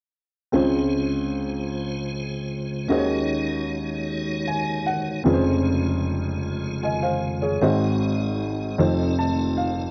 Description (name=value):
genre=gospel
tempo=51 BPM (dotted quarters)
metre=6/8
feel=straight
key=Db major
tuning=A4 = 444 Hz
part: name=warm upright piano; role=accompaniment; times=0.5-9.9 s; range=F1 to A5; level=-25 LUFS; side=equal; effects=none
part: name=tonewheel organ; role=sustained chords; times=0.5-9.9 s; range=F2 to Db5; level=-30 LUFS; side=equal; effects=fast rotary speaker, chorus vibrato
room=light reverb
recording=dry, close 1970s-style studio recording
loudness=-24 LUFS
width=mono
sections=0.5-9.9 A section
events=upright piano fill 4.1-5.3, 8.8-9.9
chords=0.5 Dbmaj7; 2.9 Ab7sus4/Eb; 5.3 Dbmaj7/F; 7.6 Ab7; 8.8 F7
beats=| 0.54 1.72 | 2.90 4.08 | 5.26 6.44 | 7.62 8.79